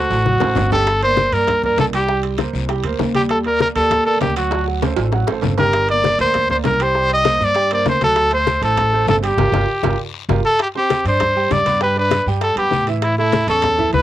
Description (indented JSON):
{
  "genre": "latin, salsa",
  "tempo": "197 BPM",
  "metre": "4/4",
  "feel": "straight",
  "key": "G minor",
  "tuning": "A4 = 439 Hz",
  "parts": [
    { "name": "bright trumpet", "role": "melody", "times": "0.0-14.0 s", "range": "E4 to Eb5", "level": "-16 LUFS", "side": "equal", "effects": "cassette tape" },
    { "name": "clear concert grand piano", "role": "accompaniment", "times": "0.0-14.0 s", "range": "E3 to D6", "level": "-24 LUFS", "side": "right 7 dB", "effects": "cassette tape" },
    { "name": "upright bass", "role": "bass", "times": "0.0-14.0 s", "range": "G1 to A2", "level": "-22 LUFS", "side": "equal", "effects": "none" },
    { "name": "congas", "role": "percussion", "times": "0.1-14.0 s", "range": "none", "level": "-24 LUFS", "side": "left 6 dB", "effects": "none" },
    { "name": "guiro", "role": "percussion", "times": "0.1-14.0 s", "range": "none", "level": "-36 LUFS", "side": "left 11 dB", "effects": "none" },
    { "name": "timbales", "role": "percussion", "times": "0.1-14.0 s", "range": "none", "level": "-27 LUFS", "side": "right 10 dB", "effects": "none" },
    { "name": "bongos", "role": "percussion", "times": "0.3-14.0 s", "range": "none", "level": "-24 LUFS", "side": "left 10 dB", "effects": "none" }
  ],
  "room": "moderate booth ambience, RT60 0.2 s",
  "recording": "home recording on cassette",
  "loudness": "-14 LUFS",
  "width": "side -13 dB against mid",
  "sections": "0.9-10.6 A section; 10.6-14.0 B section",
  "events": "drum fill 0.0-0.9, 4.5-5.7, 9.4-10.6; band accent 9.4-10.6",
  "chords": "0.0 D7 (rootless); 0.9 Gm; 2.1 Cm7; 3.3 Ebmaj7; 4.5 D7; 5.7 Gm; 6.9 Cm7; 8.2 D7; 9.4 Gm7; 10.6 Csus2; 11.8 G; 13.0 A",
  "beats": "0.26 0.56 | 0.87 1.17 1.48 1.78 | 2.08 2.39 2.69 3.00 | 3.30 3.60 3.91 4.21 | 4.52 4.82 5.12 5.43 | 5.73 6.04 6.34 6.64 | 6.95 7.25 7.56 7.86 | 8.16 8.47 8.77 9.08 | 9.38 9.69 9.99 10.29 | 10.60 10.90 11.20 11.51 | 11.81 12.12 12.42 12.72 | 13.03 13.33 13.63 13.94"
}